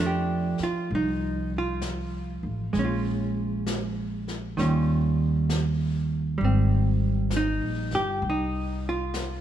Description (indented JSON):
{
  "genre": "jazz ballad",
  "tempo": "65 BPM",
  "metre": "4/4",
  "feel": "swing 66% on 8ths",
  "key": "unclear",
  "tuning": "A4 = 436 Hz",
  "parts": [
    { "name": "hollow-body jazz guitar", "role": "accompaniment", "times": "0.0-9.4 s", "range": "Eb3 to G4", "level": "-27 LUFS", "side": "right 3 dB", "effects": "none" },
    { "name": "upright bass", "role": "bass", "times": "0.0-9.4 s", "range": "G1 to F2", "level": "-27 LUFS", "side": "left 1 dB", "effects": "none" },
    { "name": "jazz brush drum kit", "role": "drums", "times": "0.6-9.4 s", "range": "brushed snare drum, hi-hat, snare drum", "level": "-37 LUFS", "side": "left 3 dB", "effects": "none" }
  ],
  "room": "light reverb",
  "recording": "small room ambience",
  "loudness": "-24 LUFS",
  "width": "side -10 dB against mid",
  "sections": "0.0-9.4 A section",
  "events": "none",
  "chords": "0.0 Fadd9; 2.8 Bbm7; 4.6 Eb9; 6.4 Abmaj7",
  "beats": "0.91 1.83 | 2.75 3.67 4.59 5.50 | 6.41 7.32 8.23 9.14"
}